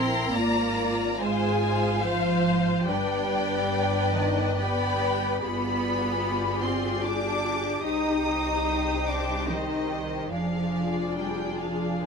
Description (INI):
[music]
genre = classical, slow romantic movement for string orchestra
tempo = 72 BPM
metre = 3/4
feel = uneven beats, rubato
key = unclear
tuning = A4 = 439 Hz
[part]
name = warm symphonic violin section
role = melody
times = 0.0-12.1 s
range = Eb5 to Eb6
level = -32 LUFS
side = left 2 dB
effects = none
[part]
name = rich studio violin section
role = second line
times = 0.0-12.1 s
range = G4 to Bb5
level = -31 LUFS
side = left 3 dB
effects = none
[part]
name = clear symphonic viola section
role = accompaniment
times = 0.0-12.1 s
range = D4 to C5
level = -30 LUFS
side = left 2 dB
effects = none
[part]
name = rich symphonic double bass section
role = bass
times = 0.0-12.1 s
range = F1 to C2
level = -32 LUFS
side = right 1 dB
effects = none
[part]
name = warm symphonic cello section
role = bass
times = 0.0-12.1 s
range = Eb3 to Eb4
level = -28 LUFS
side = right 1 dB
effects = none
[sound]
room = moderate studio ambience, RT60 0.5 s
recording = minimal, uncompressed stereo recording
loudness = -24 LUFS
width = side -5 dB against mid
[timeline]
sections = 0.0-12.1 A section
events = none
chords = 0.3 Fm/Ab; 2.9 G; 5.4 G7b9; 7.8 Cm; 10.3 Ddim/F